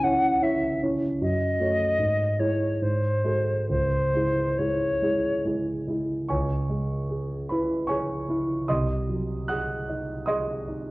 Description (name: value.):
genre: classical, romantic duo for flute and grand piano.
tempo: 67-78 BPM.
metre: 3/4.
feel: rubato.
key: C# minor.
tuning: A4 = 440 Hz.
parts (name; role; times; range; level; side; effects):
silver concert flute; melody; 0.0-5.4 s; B#4 to F#5; -25 LUFS; left 1 dB; none.
dark concert grand piano; accompaniment; 0.0-10.9 s; B#1 to F#6; -25 LUFS; right 1 dB; none.
room: wet recital hall reverb, RT60 1.4 s.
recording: worn, warbling old tape, cassette tape, warbly pitch drift.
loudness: -23 LUFS.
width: side -20 dB against mid.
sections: 0.0-6.3 A section; 6.3-10.9 A section.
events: none.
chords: 0.0 C#m; 1.2 F#m; 2.0 C#m/G#; 2.8 G#7b9; 3.7 C#m; 8.7 G#7/B#.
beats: 0.42 | 1.21 1.99 2.81 | 3.69 4.58 5.44 | 6.29 7.10 7.89 | 8.68 9.48 10.28.